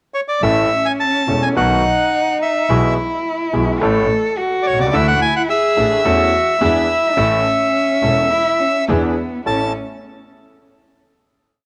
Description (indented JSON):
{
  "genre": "tango",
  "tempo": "107 BPM",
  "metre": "4/4",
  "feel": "rubato",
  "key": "A major",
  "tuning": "A4 = 440 Hz",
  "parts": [
    { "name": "bandoneon", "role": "melody", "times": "0.1-9.7 s", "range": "C#5 to A5", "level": "-19 LUFS", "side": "equal", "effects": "cassette tape" },
    { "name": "dark cello", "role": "second line", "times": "0.4-9.7 s", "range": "B3 to A4", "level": "-23 LUFS", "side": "equal", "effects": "cassette tape" },
    { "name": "bright grand piano", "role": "accompaniment", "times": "0.4-9.7 s", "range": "E1 to A4", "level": "-23 LUFS", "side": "equal", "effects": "cassette tape" },
    { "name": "warm double bass", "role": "bass", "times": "0.4-9.7 s", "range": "E1 to E2", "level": "-24 LUFS", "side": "equal", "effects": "none" },
    { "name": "clear symphonic string section", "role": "stabs", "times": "4.9-9.7 s", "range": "G#3 to E4", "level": "-32 LUFS", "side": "equal", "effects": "none" }
  ],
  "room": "light reverb, small room ambience",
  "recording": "home recording on cassette",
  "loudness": "-16 LUFS",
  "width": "mono",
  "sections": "0.0-0.4 pickup bar; 0.4-9.5 A section; 9.5-11.7 final chord",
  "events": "none",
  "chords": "0.4 A; 1.6 B7; 2.7 E/B; 3.8 A; 4.9 Dsus2; 6.1 A/E; 6.6 E7; 7.2 A; 8.9 E7; 9.5 A",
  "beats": "| 0.43 1.00 1.57 2.13 | 2.70 3.26 3.82 4.38 | 4.94 5.50 6.05 6.61 | 7.17 7.74 8.31 8.88 | 9.46"
}